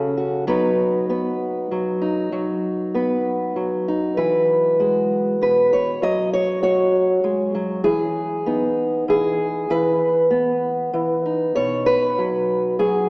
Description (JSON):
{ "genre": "folk, solo fingerstyle acoustic guitar", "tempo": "98 BPM", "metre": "3/4", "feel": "straight", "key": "B major", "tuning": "A4 = 440 Hz", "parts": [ { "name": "fingerpicked old ladder-braced acoustic guitar", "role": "solo", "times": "0.0-13.1 s", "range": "B2 to D#5", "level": "-18 LUFS", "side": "equal", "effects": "none" } ], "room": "wet concert hall reverb, RT60 2.3 s", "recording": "recorded in a church or concert hall, small speaker sound", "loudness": "-18 LUFS", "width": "side -28 dB against mid", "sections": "0.0-11.6 A section; 11.6-13.1 B section", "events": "none", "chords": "0.5 B/F#; 4.2 Eadd9; 6.0 F#5; 7.9 Emaj7; 11.6 B", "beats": "| 0.47 1.08 1.70 | 2.32 2.93 3.56 | 4.18 4.80 5.41 | 6.02 6.63 7.25 | 7.86 8.47 9.09 | 9.70 10.32 10.95 | 11.57 12.19 12.81" }